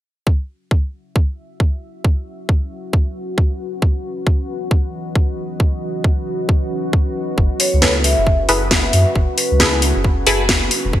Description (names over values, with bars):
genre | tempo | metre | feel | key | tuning
UK garage, two-step garage | 135 BPM | 4/4 | swing 62% on 16ths | F# dorian | A4 = 440 Hz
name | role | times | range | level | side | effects
electronic kick drum | drums | 0.3-11.0 s | none | -16 LUFS | equal | none
deep dark ambient pad | texture | 1.9-11.0 s | E3 to E5 | -25 LUFS | equal | chorus, built-in reverb, sidechain pumping
soft dub sub bass | bass | 7.4-11.0 s | E1 to F#2 | -18 LUFS | equal | tube saturation
vibraphone with soft mallets | melody | 7.6-9.7 s | B4 to E5 | -21 LUFS | equal | none
garage drum kit | drums | 7.6-10.8 s | hi-hat, snare drum | -17 LUFS | left 1 dB | gated reverb
punchy chord stab | stabs | 7.8-10.4 s | E4 to B4 | -20 LUFS | equal | chorus, ping-pong delay
room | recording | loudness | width
light reverb | bright 1980s-style digital production | -15 LUFS | side -12 dB against mid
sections
0.3-11.0 A section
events
none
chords
0.3 F#7sus4; 3.6 Esus2; 7.4 F#m11